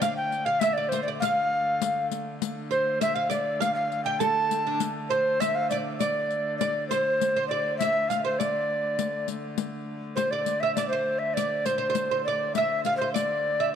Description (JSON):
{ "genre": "medieval dance", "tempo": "101 BPM", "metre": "2/4", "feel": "straight", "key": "D minor", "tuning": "A4 = 440 Hz", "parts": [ { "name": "mellow tenor recorder", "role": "melody", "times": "0.0-13.7 s", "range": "C5 to A5", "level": "-26 LUFS", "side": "left 1 dB", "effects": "none" }, { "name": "oud", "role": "second line", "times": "0.0-13.7 s", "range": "D4 to G5", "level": "-31 LUFS", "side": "right 9 dB", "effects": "none" }, { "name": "rich hurdy-gurdy", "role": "drone", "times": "0.0-13.8 s", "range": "D3 to A3", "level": "-36 LUFS", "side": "left 1 dB", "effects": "none" }, { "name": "riq", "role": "percussion", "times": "0.0-13.4 s", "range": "none", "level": "-32 LUFS", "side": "left 14 dB", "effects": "none" } ], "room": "moderate plate reverb, RT60 2.8 s", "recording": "1960s-style stereo with parts hard left and right", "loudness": "-24 LUFS", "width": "side -8 dB against mid", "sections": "0.0-7.2 A section; 7.2-13.8 B section", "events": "none", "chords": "none", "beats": "| 0.02 0.62 | 1.22 1.82 | 2.42 3.02 | 3.62 4.21 | 4.81 5.41 | 6.00 6.60 | 7.20 7.79 | 8.39 8.99 | 9.58 10.18 | 10.77 11.37 | 11.96 12.56 | 13.15 13.74" }